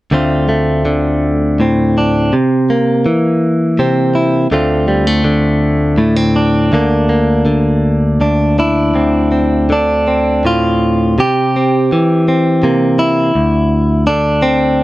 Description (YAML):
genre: folk, solo fingerstyle acoustic guitar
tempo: 82 BPM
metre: 3/4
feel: rubato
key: D minor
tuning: A4 = 440 Hz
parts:
  - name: direct-recorded clean electric guitar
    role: solo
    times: 0.1-14.8 s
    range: D2 to G4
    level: -10 LUFS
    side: equal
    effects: none
room: light reverb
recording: dark, warm production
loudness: -11 LUFS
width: side -17 dB against mid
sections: 0.1-8.9 A section; 8.9-14.8 B section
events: none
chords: 0.1 Dm7; 2.3 C7; 4.5 Dm7; 6.7 Bb/D; 8.9 Dm7; 11.2 C7; 13.3 D5